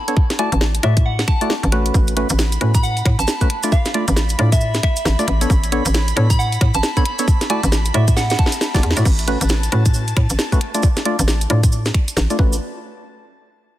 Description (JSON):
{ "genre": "UK garage, two-step garage", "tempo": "135 BPM", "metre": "4/4", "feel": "swing 61% on 16ths", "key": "A major", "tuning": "A4 = 438 Hz", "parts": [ { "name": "soft synth bell", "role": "melody", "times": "0.0-8.7 s", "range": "E5 to B5", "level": "-24 LUFS", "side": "equal", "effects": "chorus, phaser, tape echo" }, { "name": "percussive organ stab", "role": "stabs", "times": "0.1-12.6 s", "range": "A3 to D5", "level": "-23 LUFS", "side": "equal", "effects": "chorus, tape echo" }, { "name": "garage drum kit", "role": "drums", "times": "0.1-12.4 s", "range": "crash cymbal, finger snaps, hi-hat, snare drum", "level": "-22 LUFS", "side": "equal", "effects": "none" }, { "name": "electronic kick drum", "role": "drums", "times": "0.2-12.5 s", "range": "none", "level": "-16 LUFS", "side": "equal", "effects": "none" }, { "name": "hollow knocking FM bass", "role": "bass", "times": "0.5-12.6 s", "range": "A1 to A2", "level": "-18 LUFS", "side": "equal", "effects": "none" }, { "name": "airy breathy pad", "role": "sustained chords", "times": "1.9-12.4 s", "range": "A5 to B5", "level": "-31 LUFS", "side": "right 2 dB", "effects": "chorus, sidechain pumping" }, { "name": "cabasa", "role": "percussion", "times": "1.9-12.6 s", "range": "none", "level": "-28 LUFS", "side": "right 3 dB", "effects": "none" } ], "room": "little or no reverb", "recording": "dense, heavily limited modern master", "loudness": "-15 LUFS", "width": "side -14 dB against mid", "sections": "0.0-9.1 A section; 9.1-12.6 B section; 12.6-13.8 C section", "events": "drum fill 8.2-9.1; filter sweep on FM bass 9.1-12.6; filter sweep on synth stab 9.1-12.6; filter sweep on analog synth pad 9.1-12.6", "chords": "0.2 E9sus4/A; 1.9 A69; 3.5 Dm/A; 5.3 Bm9/A; 7.3 E9sus4/A; 9.1 A69; 10.6 Dm/A; 12.4 A69; 12.6 N.C.", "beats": "| 0.17 0.61 1.05 1.50 | 1.94 2.39 2.83 3.28 | 3.72 4.17 4.61 5.05 | 5.50 5.94 6.39 6.83 | 7.28 7.72 8.17 8.61 | 9.05 9.50 9.94 10.39 | 10.83 11.28 11.72 12.17" }